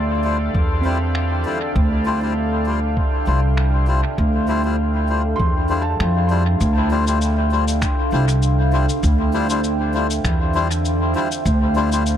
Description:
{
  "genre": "ambient dub",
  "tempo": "99 BPM",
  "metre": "4/4",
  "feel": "swing 54% on 16ths",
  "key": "D minor",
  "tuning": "A4 = 441 Hz",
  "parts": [
    { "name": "deep dark ambient pad", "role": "sustained chords", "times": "0.0-12.2 s", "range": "D4 to G5", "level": "-24 LUFS", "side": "right 1 dB", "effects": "chorus, built-in reverb" },
    { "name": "felt-muted upright piano", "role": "arpeggios", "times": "0.0-6.7 s", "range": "C4 to C6", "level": "-32 LUFS", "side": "right 4 dB", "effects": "analog delay" },
    { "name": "upright bass", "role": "bass", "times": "0.0-12.2 s", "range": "C2 to F2", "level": "-19 LUFS", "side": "equal", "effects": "none" },
    { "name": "melodica", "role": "stabs", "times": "0.2-12.0 s", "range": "G3 to C5", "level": "-25 LUFS", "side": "left 5 dB", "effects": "dub echo" },
    { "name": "electronic kick drum", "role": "drums", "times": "0.5-11.6 s", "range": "none", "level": "-21 LUFS", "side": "equal", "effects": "none" },
    { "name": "electronic finger snaps and shaker", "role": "drums", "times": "1.1-12.2 s", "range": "none", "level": "-32 LUFS", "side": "left 3 dB", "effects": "dub echo" }
  ],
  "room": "light reverb",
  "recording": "echo-heavy mix",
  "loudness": "-16 LUFS",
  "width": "side -10 dB against mid",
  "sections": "0.0-6.6 A section; 6.6-12.2 B section",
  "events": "none",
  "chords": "0.0 Dm11",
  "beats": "0.55 1.15 | 1.76 2.37 2.97 3.58 | 4.18 4.79 5.40 6.00 | 6.61 7.21 7.82 8.43 | 9.03 9.64 10.24 10.85 | 11.46 12.06"
}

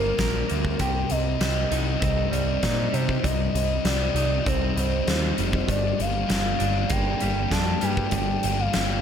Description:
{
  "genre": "rock, shoegaze and dream pop",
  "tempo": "98 BPM",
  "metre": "4/4",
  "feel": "straight",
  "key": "unclear",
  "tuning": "A4 = 441 Hz",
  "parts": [
    { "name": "pure breathy sine lead", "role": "melody", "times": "0.0-9.0 s", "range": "Bb4 to A5", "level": "-29 LUFS", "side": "equal", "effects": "chorus, tape echo" },
    { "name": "direct-recorded clean electric guitar", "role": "riff", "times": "0.0-9.0 s", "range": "G2 to Bb4", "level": "-31 LUFS", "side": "right 11 dB", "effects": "reverse reverb" },
    { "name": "thick fuzz guitar", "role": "riff", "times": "0.0-9.0 s", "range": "G2 to G4", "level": "-29 LUFS", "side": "left 13 dB", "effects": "distortion, wide subtle chorus" },
    { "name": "growling picked electric bass", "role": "bass", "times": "0.0-9.0 s", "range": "F1 to C3", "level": "-27 LUFS", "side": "equal", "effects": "overdrive" },
    { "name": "huge arena drum kit", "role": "drums", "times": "0.2-8.9 s", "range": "hi-hat, kick drum, snare drum", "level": "-28 LUFS", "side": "equal", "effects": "none" }
  ],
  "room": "light reverb",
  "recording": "none",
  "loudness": "-21 LUFS",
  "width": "side -8 dB against mid",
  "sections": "0.0-9.0 A section",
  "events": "none",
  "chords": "0.0 Gm; 0.8 Cm; 5.7 Gm",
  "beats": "0.19 | 0.80 1.41 2.02 2.63 | 3.24 3.85 4.46 5.07 | 5.68 6.29 6.91 7.52 | 8.13 8.74"
}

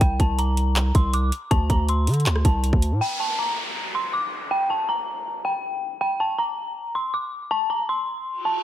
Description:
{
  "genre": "hip hop, trap",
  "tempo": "160 BPM",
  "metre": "4/4",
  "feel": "half-time",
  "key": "unclear",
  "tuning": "A4 = 440 Hz",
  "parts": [
    { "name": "dark detuned synth bell", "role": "melody", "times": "0.0-8.6 s", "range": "G5 to D6", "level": "-25 LUFS", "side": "left 1 dB", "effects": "chorus, low-pass filter" },
    { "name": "distorted 808-style bass", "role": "bass", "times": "0.0-3.0 s", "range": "C2 to D3", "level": "-21 LUFS", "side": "equal", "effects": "distortion" },
    { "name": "trap drum kit", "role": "drums", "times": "0.0-2.9 s", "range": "handclaps, hi-hat, kick drum, rim click", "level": "-21 LUFS", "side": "equal", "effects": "none" },
    { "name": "downlifter and reverse cymbal", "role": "sound effects", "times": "3.0-6.0, 8.3-8.6 s", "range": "none", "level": "-32 LUFS", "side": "equal", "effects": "none" }
  ],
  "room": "light reverb",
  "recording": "heavily compressed radio sound",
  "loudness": "-21 LUFS",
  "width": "side -12 dB against mid",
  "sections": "0.0-3.0 A section; 3.0-8.6 B section",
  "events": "reverse cymbal 8.3",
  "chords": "0.0 Bbsus2/C; 1.5 D5; 3.0 N.C.",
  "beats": "| 0.01 0.39 0.76 1.14 | 1.51 1.89 2.26 2.64 | 3.01 3.39 3.76 4.14 | 4.51 4.89 5.26 5.64 | 6.01 6.39 6.76 7.14 | 7.51 7.89 8.26"
}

